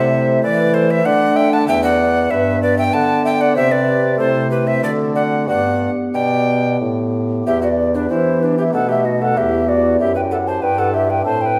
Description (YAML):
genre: classical, baroque-style sonata movement with continuo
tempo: 95 BPM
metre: 3/4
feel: straight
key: G major, E minor from 7.5 s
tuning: A4 = 440 Hz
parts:
  - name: tenor recorder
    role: melody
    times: 0.0-11.6 s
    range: D4 to A5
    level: -22 LUFS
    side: equal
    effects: none
  - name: mellow baroque flute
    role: second line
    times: 0.0-11.6 s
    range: G4 to A5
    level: -21 LUFS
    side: equal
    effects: none
  - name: pipe organ, stopped flute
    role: accompaniment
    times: 0.0-11.6 s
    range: E2 to B4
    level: -23 LUFS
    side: equal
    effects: none
  - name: warm bassoon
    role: bass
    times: 0.0-11.6 s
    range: E2 to E3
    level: -23 LUFS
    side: equal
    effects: none
room: wet recital hall reverb, RT60 1.6 s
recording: none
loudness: -16 LUFS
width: mono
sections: 0.0-7.5 A section; 7.5-11.6 A section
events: none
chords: 0.0 Am/C; 1.1 D; 1.7 Em; 2.9 Bm/D; 3.6 C5; 4.2 Am/C; 4.8 D7; 5.5 G; 7.5 Em; 8.7 B7; 9.4 Em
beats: 0.43 1.06 | 1.68 2.31 2.94 | 3.57 4.20 4.83 | 5.49 6.15 6.81 | 7.47 8.11 8.74 | 9.37 10.00 10.63 | 11.26